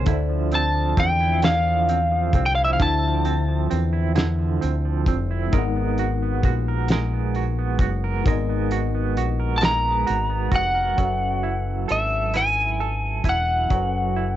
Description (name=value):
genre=slow six-eight R&B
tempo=44 BPM (dotted quarters)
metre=6/8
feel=straight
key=unclear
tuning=A4 = 440 Hz
part: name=semi-hollow electric guitar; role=second line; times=0.0-14.4 s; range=D3 to C5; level=-28 LUFS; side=right 11 dB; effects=tremolo
part: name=mellow tine electric piano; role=accompaniment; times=0.0-14.4 s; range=D3 to G#5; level=-31 LUFS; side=left 12 dB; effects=medium stereo tremolo
part: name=deep dub fingered electric bass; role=bass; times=0.0-14.4 s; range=E1 to E2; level=-23 LUFS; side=equal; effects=none
part: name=cloth-damped thuddy drum kit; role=drums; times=0.1-13.9 s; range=hi-hat, kick drum, rim click, snare drum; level=-22 LUFS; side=equal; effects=none
part: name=lightly driven lead guitar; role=melody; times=0.6-5.0, 9.6-14.4 s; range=E5 to Bb5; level=-22 LUFS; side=equal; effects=cassette tape
room=light reverb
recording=home recording on cassette, nothing above 7.8 kHz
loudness=-19 LUFS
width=side -12 dB against mid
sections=0.0-11.0 A section; 11.0-14.4 B section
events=none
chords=0.1 Dm9; 5.5 Abm9; 11.0 F#m11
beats=| 0.07 1.44 | 2.80 4.16 | 5.53 6.89 | 8.25 9.62 | 10.98 12.34 | 13.71